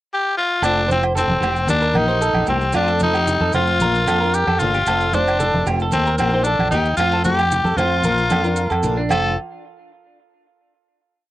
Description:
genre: highlife guitar band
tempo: 113 BPM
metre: 4/4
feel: straight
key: F mixolydian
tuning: A4 = 442 Hz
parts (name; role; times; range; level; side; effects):
- breathy tenor saxophone; melody; 0.1-9.4 s; C4 to A4; -19 LUFS; left 2 dB; cassette tape
- picked steel-string acoustic guitar; accompaniment; 0.6-9.3 s; Eb3 to G4; -26 LUFS; left 5 dB; cassette tape
- clean electric guitar; arpeggios; 0.6-9.4 s; D4 to C5; -23 LUFS; right 3 dB; analog chorus, cassette tape, tape echo
- fingered electric bass; bass; 0.6-9.4 s; F1 to F2; -23 LUFS; equal; none
- agogo bells; percussion; 0.6-9.2 s; none; -27 LUFS; right 4 dB; none
- maracas; percussion; 0.6-9.4 s; none; -34 LUFS; right 5 dB; none
- congas; percussion; 0.9-9.4 s; none; -26 LUFS; right 1 dB; none
room: moderate booth ambience, RT60 0.2 s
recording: home recording on cassette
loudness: -16 LUFS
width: side -15 dB against mid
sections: 0.0-0.6 pickup bar; 0.6-9.1 A section; 9.1-11.2 final chord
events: none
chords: 0.0 N.C.; 0.6 F; 1.7 Eb; 2.7 F; 3.8 Bb; 4.9 F; 5.9 Eb; 7.0 F; 8.0 Bb; 9.1 F

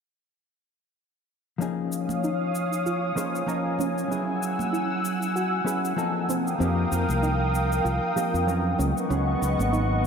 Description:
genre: sunset chillout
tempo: 96 BPM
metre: 4/4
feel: swing 57% on 16ths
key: unclear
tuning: A4 = 440 Hz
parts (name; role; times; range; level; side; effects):
- hollow-body jazz guitar; accompaniment; 1.6-10.1 s; F3 to C5; -28 LUFS; moving between left 6 dB and right 4 dB; auto-pan, vintage 12-bit sampler grit, tape echo
- lush unison pad; sustained chords; 1.6-10.1 s; Cb4 to Fb6; -27 LUFS; equal; chorus, phaser
- soft round pluck; arpeggios; 1.6-10.0 s; C4 to Ab4; -33 LUFS; right 2 dB; wide subtle chorus, tape echo
- shaker; drums; 1.6-9.9 s; none; -40 LUFS; left 3 dB; small room ambience
- congas; percussion; 2.1-9.7 s; none; -39 LUFS; right 3 dB; none
- fretless electric bass; bass; 6.6-10.1 s; Ab1 to F2; -25 LUFS; left 1 dB; none
room: wet cathedral reverb, RT60 5.6 s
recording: dreamy mix soaked in reverb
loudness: -23 LUFS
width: side -6 dB against mid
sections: 1.6-10.1 A section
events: filter sweep on synth pluck 1.6-10.1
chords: 1.6 Eb9sus4; 4.1 Gb9sus4; 6.3 F9sus4; 8.8 Db9sus4

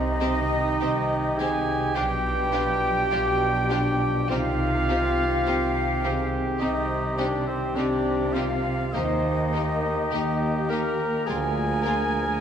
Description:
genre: classical, slow romantic movement for symphony orchestra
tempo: 52 BPM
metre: 4/4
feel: rubato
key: C minor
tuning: A4 = 438 Hz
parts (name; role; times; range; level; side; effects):
- large flute ensemble; second line; 0.0-12.4 s; C5 to Bb5; -32 LUFS; left 2 dB; none
- mellow clarinet; second line; 0.0-12.4 s; C4 to Bb4; -31 LUFS; left 2 dB; none
- mellow cor anglais; second line; 0.0-12.4 s; Bb4 to Ab5; -30 LUFS; right 3 dB; none
- warm trombone section; sustained chords; 0.0-12.4 s; Eb3 to Eb4; -32 LUFS; right 2 dB; none
- warm trumpet; stabs; 0.0-12.4 s; G4 to Bb4; -31 LUFS; right 1 dB; none
- rich chamber cello section; bass; 0.0-12.3 s; D2 to C3; -32 LUFS; right 1 dB; none
- warm chamber double bass section; bass; 0.0-12.3 s; B1 to Eb2; -30 LUFS; right 2 dB; none
- rich chamber violin section; melody; 0.2-11.9 s; G4 to C5; -39 LUFS; left 5 dB; none
- clear chamber violin section; second line; 0.2-11.9 s; Eb4 to G4; -40 LUFS; left 4 dB; none
- rich studio viola section; accompaniment; 0.2-11.9 s; Bb3 to D4; -36 LUFS; right 1 dB; none
- mellow French horn section; sustained chords; 2.0-12.2 s; D4 to C5; -32 LUFS; left 4 dB; none
room: wet scoring stage reverb, RT60 1.7 s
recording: none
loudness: -22 LUFS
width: side -8 dB against mid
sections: 0.0-12.4 A section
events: none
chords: 0.0 Cm; 2.0 G7/B; 4.3 Cm; 8.9 Eb; 11.3 Bb7/D

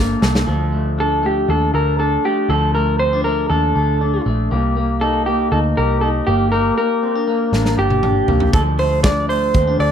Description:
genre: jangly indie pop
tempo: 119 BPM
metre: 4/4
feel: straight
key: unclear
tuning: A4 = 436 Hz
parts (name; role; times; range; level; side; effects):
- string machine, cellos; sustained chords; 0.0-0.5 s; none; barely audible; none; none
- electric guitar through a small old amp; arpeggios; 0.0-9.9 s; F3 to A4; -20 LUFS; left 1 dB; spring reverb, slapback echo
- vintage muted picked electric bass; bass; 0.0-9.9 s; G1 to Eb2; -20 LUFS; equal; none
- big rock drum kit; drums; 0.2-0.5, 7.5-9.9 s; hi-hat, kick drum, snare drum, toms; -18 LUFS; equal; none
- electric guitar through a small old amp; melody; 1.0-9.9 s; G4 to D5; -18 LUFS; equal; slapback echo
room: small room ambience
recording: dry, close 1970s-style studio recording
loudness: -15 LUFS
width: side -8 dB against mid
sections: 0.5-9.9 A section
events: drum fill 0.0-0.5, 7.5-8.5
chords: 0.5 Dm; 4.5 Cm7; 6.3 Gm; 8.5 Dm

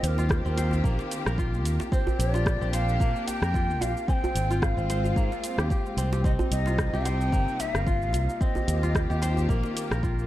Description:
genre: organic downtempo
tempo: 111 BPM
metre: 4/4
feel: swing 55% on 16ths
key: unclear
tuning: A4 = 438 Hz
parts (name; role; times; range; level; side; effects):
- breathy mellow ney; melody; 0.0-9.5 s; Bb4 to Ab5; -33 LUFS; equal; digital delay
- rich symphonic string section; sustained chords; 0.0-10.3 s; C3 to G4; -35 LUFS; left 2 dB; sidechain pumping
- kora; arpeggios; 0.0-10.3 s; Bb3 to C5; -33 LUFS; equal; digital delay
- fretless electric bass; bass; 0.0-10.3 s; G1 to Bb2; -26 LUFS; equal; sidechain pumping
- afro-pop drum kit; drums; 0.0-10.3 s; hi-hat, rim click, shaker; -33 LUFS; equal; studio reverb
- djembe; percussion; 0.2-9.7 s; none; -34 LUFS; right 1 dB; none
- electronic kick drum; drums; 0.3-10.2 s; none; -26 LUFS; equal; studio reverb
room: studio reverb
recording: dark, warm production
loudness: -23 LUFS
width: side -14 dB against mid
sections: 0.0-10.3 A section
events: none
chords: 0.0 Eb; 1.9 Bb69; 4.1 Ab69; 6.2 Cm7; 8.4 Eb

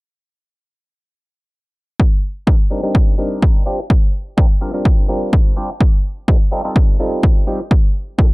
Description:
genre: filtered disco house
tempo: 126 BPM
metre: 4/4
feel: straight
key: C dorian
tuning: A4 = 440 Hz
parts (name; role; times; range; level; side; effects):
- electronic kick drum; drums; 2.0-8.3 s; none; -12 LUFS; equal; none
- bright clav; accompaniment; 2.5-8.3 s; G3 to Bb4; -22 LUFS; equal; phaser, sidechain pumping, low-pass filter
room: digital ambience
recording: dry, gritty hardware recording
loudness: -13 LUFS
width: side -24 dB against mid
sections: 2.0-8.3 A section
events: filter sweep on clav 2.0-8.3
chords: 2.0 Cm9; 3.7 Bb69; 5.8 F9; 7.7 Gm9

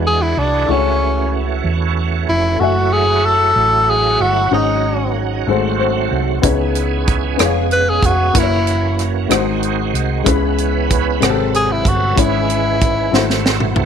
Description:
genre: slow gospel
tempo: 63 BPM (dotted quarters)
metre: 6/8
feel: straight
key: C# minor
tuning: A4 = 441 Hz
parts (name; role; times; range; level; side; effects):
- warm baby grand piano; accompaniment; 0.0-13.9 s; G#2 to G#5; -20 LUFS; left 11 dB; none
- bright tonewheel organ; sustained chords; 0.0-13.9 s; D#3 to B4; -21 LUFS; right 13 dB; slow rotary speaker, chorus vibrato
- hollow-body short-scale fingered electric bass; bass; 0.0-13.9 s; E#1 to E2; -20 LUFS; right 2 dB; none
- bright tenor saxophone; melody; 0.1-13.5 s; C#4 to B4; -16 LUFS; left 2 dB; none
- tight funk drum kit; drums; 6.4-13.9 s; hi-hat, kick drum, rim click, snare drum, toms; -17 LUFS; right 2 dB; none
room: light reverb, small room ambience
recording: 1960s-style stereo with parts hard left and right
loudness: -13 LUFS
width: side -8 dB against mid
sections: 0.0-13.9 A section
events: grand piano fill 5.5-6.4; drum fill 13.1-13.9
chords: 0.0 E9; 0.7 A6/C#; 2.6 F#m9; 4.5 G#7sus4; 5.5 G#7b9; 6.4 C#m9; 7.4 C#7/E#; 8.4 F#7; 9.3 G#7; 10.3 C#m7; 11.2 G#7b9; 12.2 C#m/G#; 13.1 G#7b9b13

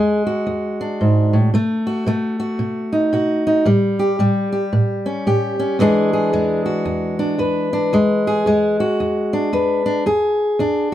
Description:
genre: blues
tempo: 113 BPM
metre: 4/4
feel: swing 61% on 8ths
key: E mixolydian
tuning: A4 = 443 Hz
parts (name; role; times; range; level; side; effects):
- fingerpicked steel-string acoustic guitar; solo; 0.0-10.9 s; E2 to B4; -16 LUFS; equal; none
room: moderate studio reverb, RT60 0.5 s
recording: dark, warm production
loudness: -16 LUFS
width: side -12 dB against mid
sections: 0.0-10.1 A section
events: none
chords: 0.0 E7; 1.5 B7; 3.7 A7; 5.8 E7

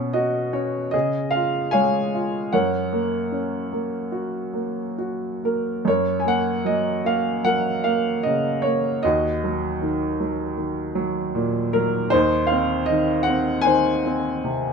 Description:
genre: classical, lyrical solo piano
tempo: 76 BPM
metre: 4/4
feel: rubato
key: F# major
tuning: A4 = 440 Hz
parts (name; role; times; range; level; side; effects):
- warm baby grand piano; solo; 0.0-14.7 s; D#2 to G#5; -20 LUFS; equal; none
room: light reverb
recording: minimal, uncompressed stereo recording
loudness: -20 LUFS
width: side -5 dB against mid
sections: 0.0-5.8 A section; 5.8-14.7 B section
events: none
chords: 0.0 Bsus2; 0.9 C#; 2.5 F#; 9.0 D#m; 12.1 G#/D#

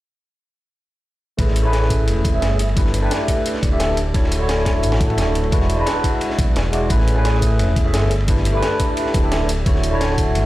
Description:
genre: liquid drum and bass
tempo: 174 BPM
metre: 4/4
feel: swing 54% on 16ths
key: A major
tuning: A4 = 440 Hz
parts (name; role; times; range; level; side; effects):
- barky tine electric piano; accompaniment; 1.4-10.5 s; G#3 to E5; -21 LUFS; equal; overdrive, phaser, dub echo
- smooth gliding synth bass; bass; 1.4-10.5 s; D1 to B1; -19 LUFS; equal; none
- crunchy breakbeat drum kit; drums; 1.4-10.4 s; ride cymbal, snare drum; -28 LUFS; equal; high-pass filter on cymbals, high-pass filter on snare, high-pass filter on room
- electronic hi-hat; drums; 1.4-10.4 s; none; -31 LUFS; equal; none
- electronic kick drum; drums; 1.4-10.3 s; none; -19 LUFS; equal; none
room: light reverb, small room ambience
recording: played on a big sound system in a bare room, stone room reverb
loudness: -16 LUFS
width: side -16 dB against mid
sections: 1.4-10.5 A section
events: none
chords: 1.4 Amaj9; 2.6 G69; 4.0 Dmaj9; 5.5 E9; 6.9 Amaj9; 8.1 G69; 9.5 Dmaj9

